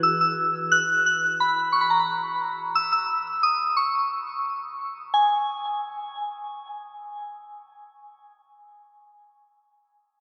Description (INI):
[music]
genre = dream pop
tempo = 88 BPM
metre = 4/4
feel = straight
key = G# minor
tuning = A4 = 440 Hz
[part]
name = soft synth bell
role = melody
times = 0.0-8.6 s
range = G#5 to F#6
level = -24 LUFS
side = equal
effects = chorus, diffuse ambient delay
[sound]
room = wet cathedral reverb, RT60 6.4 s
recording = dreamy mix soaked in reverb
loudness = -24 LUFS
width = mono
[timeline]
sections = 0.0-5.1 A section; 5.1-7.8 B section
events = none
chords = none